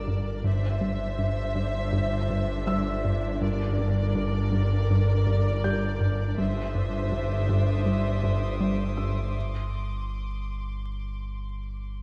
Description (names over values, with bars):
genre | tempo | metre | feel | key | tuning
cinematic, suspense film score | 81 BPM | 4/4 | straight | G dorian | A4 = 440 Hz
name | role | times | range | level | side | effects
rich studio violin section | melody | 0.0-9.3 s | D5 to E5 | -38 LUFS | equal | none
warm studio viola section | accompaniment | 0.0-9.3 s | D4 to C5 | -37 LUFS | equal | none
warm studio cello section | bass | 0.0-9.3 s | G2 | -33 LUFS | equal | none
warm studio double bass section | bass | 0.0-9.3 s | G1 | -34 LUFS | equal | none
sub bass with octave | drone | 0.0-12.0 s | G1 | -36 LUFS | equal | none
rich studio violin section | texture | 0.0-0.1, 6.4-11.9 s | C6 to Eb6 | -45 LUFS | equal | none
plucky analog bass | riff | 0.1-9.2 s | G2 to G3 | -31 LUFS | equal | none
felt-muted upright piano | texture | 2.7-9.4 s | E6 to G6 | -42 LUFS | equal | none
room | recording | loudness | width
wet scoring stage reverb, RT60 1.7 s | heard from further back in the room, vinyl crackle | -27 LUFS | mono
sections
0.0-12.0 A section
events
break 9.3-12.0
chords
0.5 Cadd9/G; 3.4 Gm; 6.4 Cadd9/G; 9.3 G5